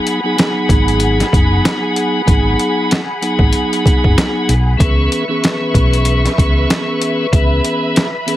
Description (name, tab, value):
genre	hip hop, boom-bap hip-hop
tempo	95 BPM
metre	4/4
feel	swing 58% on 16ths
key	C# minor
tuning	A4 = 440 Hz
part	tonewheel organ	accompaniment	0.0-8.4 s	E3 to G#4	-17 LUFS	equal	slow rotary speaker, cassette tape, high-pass filter, low-pass filter
part	rich studio string section	sustained chords	0.0-8.4 s	G#4 to C#6	-20 LUFS	left 1 dB	high-pass filter, low-pass filter
part	boom bap sampler-style drum kit	drums	0.1-8.4 s	hi-hat, kick drum, snare drum	-14 LUFS	equal	none
part	hollow-body short-scale fingered electric bass	bass	0.7-7.6 s	F#1 to C#2	-15 LUFS	equal	none
room	little or no reverb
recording	heavily compressed radio sound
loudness	-12 LUFS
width	side -14 dB against mid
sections	0.0-8.4 A section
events	none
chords	0.0 G#m7; 4.8 C#m7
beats	0.38 1.01 1.64 | 2.28 2.91 3.54 4.17 | 4.80 5.43 6.07 6.70 | 7.33 7.96